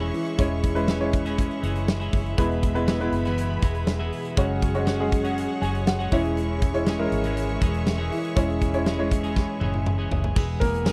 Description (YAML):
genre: piano-driven pop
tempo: 120 BPM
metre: 4/4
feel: straight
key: unclear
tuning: A4 = 441 Hz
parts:
  - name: clear concert grand piano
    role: accompaniment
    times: 0.0-10.9 s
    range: B2 to G#5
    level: -29 LUFS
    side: equal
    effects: none
  - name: rich studio string section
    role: sustained chords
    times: 0.0-10.9 s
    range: G#4 to C#6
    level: -38 LUFS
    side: equal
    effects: none
  - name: twelve-string electric guitar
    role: riff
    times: 0.0-10.9 s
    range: E2 to G#4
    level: -34 LUFS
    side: equal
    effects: none
  - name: vintage muted fingered electric bass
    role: bass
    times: 0.0-10.9 s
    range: E1 to G#1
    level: -30 LUFS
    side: equal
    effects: none
  - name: huge arena drum kit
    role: drums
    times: 0.1-10.9 s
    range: crash cymbal, hi-hat, kick drum, snare drum, toms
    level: -27 LUFS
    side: equal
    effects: none
room: little or no reverb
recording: dry, close 1970s-style studio recording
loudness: -24 LUFS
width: mono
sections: 0.0-10.4 A section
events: grand piano fill 5.4-6.4; drum fill 9.4-10.4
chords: 0.0 C#m/E; 2.4 E; 4.4 F#sus2; 6.1 C#m/E; 10.4 E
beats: | 0.38 0.88 1.38 1.88 | 2.38 2.88 3.38 3.88 | 4.38 4.87 5.37 5.87 | 6.37 6.87 7.37 7.87 | 8.37 8.87 9.37 9.86 | 10.36 10.86